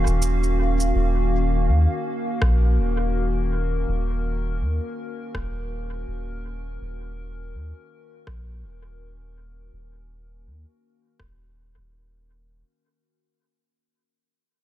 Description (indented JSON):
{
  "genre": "ambient dub",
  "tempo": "82 BPM",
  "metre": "4/4",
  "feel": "swing 59% on 16ths",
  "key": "Eb minor",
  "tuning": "A4 = 441 Hz",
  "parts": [
    { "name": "warbly tape-like pad", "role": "sustained chords", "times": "0.0-12.7 s", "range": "Eb3 to F5", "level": "-28 LUFS", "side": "equal", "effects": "chorus, built-in reverb" },
    { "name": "soft dub sub bass", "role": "bass", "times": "0.0-12.6 s", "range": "Eb1 to Eb2", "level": "-23 LUFS", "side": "equal", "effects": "none" },
    { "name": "electronic shaker and rim click", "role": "drums", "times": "0.1-11.4 s", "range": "none", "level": "-34 LUFS", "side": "right 1 dB", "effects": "overdrive, studio reverb, dub echo" },
    { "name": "electronic kick drum", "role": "drums", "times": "2.4-11.4 s", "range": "none", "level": "-29 LUFS", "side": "equal", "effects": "none" }
  ],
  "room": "digital ambience",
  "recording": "none",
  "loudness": "-21 LUFS",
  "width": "side -13 dB against mid",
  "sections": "0.0-12.7 A section",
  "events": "fade-out 0.0-12.7",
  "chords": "0.0 Ebm9"
}